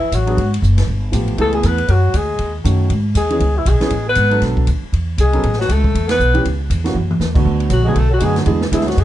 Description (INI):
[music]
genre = jazz, small-group swing and bop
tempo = 237 BPM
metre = 4/4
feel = swing 60% on 8ths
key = unclear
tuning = A4 = 441 Hz
[part]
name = warm alto saxophone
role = melody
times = 0.0-9.0 s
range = E4 to B4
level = -19 LUFS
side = left 3 dB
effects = none
[part]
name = breathy tenor saxophone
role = second line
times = 0.0-9.0 s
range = E3 to B3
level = -26 LUFS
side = right 3 dB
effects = none
[part]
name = upright bass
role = bass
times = 0.0-9.0 s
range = F#1 to G#2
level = -16 LUFS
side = equal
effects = none
[part]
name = open jazz drum kit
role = drums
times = 0.1-9.0 s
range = crash cymbal, hi-hat, kick drum, ride cymbal, snare drum, toms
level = -22 LUFS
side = equal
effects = none
[part]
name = warm grand piano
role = accompaniment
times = 0.3-8.9 s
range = D3 to A4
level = -20 LUFS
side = right 3 dB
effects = none
[sound]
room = little or no reverb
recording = dark, warm production, nothing above 10.8 kHz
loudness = -14 LUFS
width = side -13 dB against mid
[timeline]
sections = 0.0-7.5 A section; 7.5-9.0 B section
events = band accent 6.1; drum fill 6.9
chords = 0.4 F#sus2; 0.9 G9; 1.4 F#m11; 2.4 D#m7b5; 2.9 G#5; 3.4 C#m7; 4.4 Bm7; 4.9 E; 5.4 Aadd9; 6.4 C#madd11; 6.9 E9sus4; 7.5 Bm7; 8.5 E7